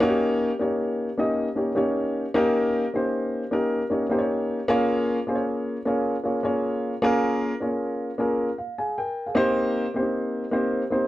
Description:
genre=soul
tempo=103 BPM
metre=4/4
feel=swing 65% on 8ths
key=unclear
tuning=A4 = 445 Hz
part: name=dark upright piano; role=solo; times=0.0-11.1 s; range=Bb3 to Ab5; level=-22 LUFS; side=equal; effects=none
room=moderate studio ambience, RT60 0.5 s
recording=dark, warm production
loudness=-22 LUFS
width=side -15 dB against mid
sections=0.0-11.1 A section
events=upright piano fill 8.2-9.4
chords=0.0 Eb7; 4.7 Bbm7; 9.4 Cm7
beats=| 0.01 0.60 1.19 1.77 | 2.36 2.94 3.53 4.11 | 4.70 5.28 5.87 6.45 | 7.04 7.62 8.20 8.79 | 9.37 9.96 10.54

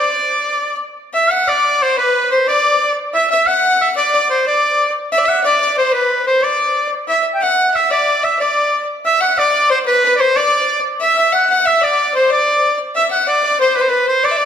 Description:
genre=medieval dance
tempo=122 BPM (dotted quarters)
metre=6/8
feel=straight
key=D mixolydian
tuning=A4 = 440 Hz
part: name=clear shawm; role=melody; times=0.0-14.5 s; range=B4 to G5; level=-14 LUFS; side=right 1 dB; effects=none
part: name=bright fiddle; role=second line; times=0.0-14.5 s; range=B4 to F#5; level=-18 LUFS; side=left 2 dB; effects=none
room=wet recital hall reverb, RT60 1.7 s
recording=dark, warm production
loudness=-12 LUFS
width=side -8 dB against mid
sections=1.0-8.9 A section; 8.9-14.5 A section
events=speeding up 0.0-14.5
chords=none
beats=0.48 | 0.98 1.48 | 1.97 2.47 | 2.97 3.46 | 3.96 4.45 | 4.95 5.44 | 5.94 6.43 | 6.92 7.41 | 7.91 8.40 | 8.89 9.38 | 9.87 10.35 | 10.84 11.33 | 11.82 12.30 | 12.79 13.27 | 13.76 14.24

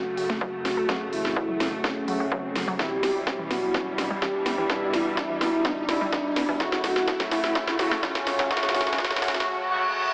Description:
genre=melodic techno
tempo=126 BPM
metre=4/4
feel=straight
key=F# phrygian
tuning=A4 = 440 Hz
part: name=wide unison lead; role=melody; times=0.0-9.4 s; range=C#4 to G4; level=-28 LUFS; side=equal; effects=cassette tape, sidechain pumping, tape echo
part: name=rich studio string section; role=sustained chords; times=0.0-9.4 s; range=E2 to A3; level=-34 LUFS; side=equal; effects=sidechain pumping, low-pass filter
part: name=analog pluck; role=arpeggios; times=0.0-9.3 s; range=E3 to A4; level=-34 LUFS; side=equal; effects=chorus, sidechain pumping, tape echo
part: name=analog synth brass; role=stabs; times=0.0-10.1 s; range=B2 to F#4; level=-30 LUFS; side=equal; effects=chorus, sidechain pumping, tape echo
part: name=riser and reverse cymbal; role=sound effects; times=1.5-10.1 s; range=none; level=-34 LUFS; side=equal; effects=none
part: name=techno drum kit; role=drums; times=0.2-9.5 s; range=hi-hat, snare drum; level=-29 LUFS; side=equal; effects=overdrive, high-pass filter on snare, small room ambience, high-pass filter on hats
part: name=electronic kick drum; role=drums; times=0.4-9.1 s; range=none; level=-30 LUFS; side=equal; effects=high-pass filter on kick, small room ambience
room=wet lush hall reverb, RT60 1.8 s, digital ambience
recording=high-pass filter, AM radio sound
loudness=-23 LUFS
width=side -35 dB against mid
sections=0.0-10.1 A section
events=build-up 0.0-10.1; drum fill 0.0-9.5; filter sweep on synth arpeggio sound 0.0-10.1; filter sweep on analog synth lead 0.0-10.1; filter sweep on analog polysynth 0.0-10.1; filter sweep 0.0-10.1; reverse cymbal 9.5-10.1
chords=0.0 F#m; 2.8 Em; 6.6 F#m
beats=0.41 | 0.89 1.36 1.84 2.32 | 2.79 3.27 3.75 4.22 | 4.70 5.17 5.65 6.13 | 6.60 7.08 7.55 8.03 | 8.51 8.98 9.46 9.94

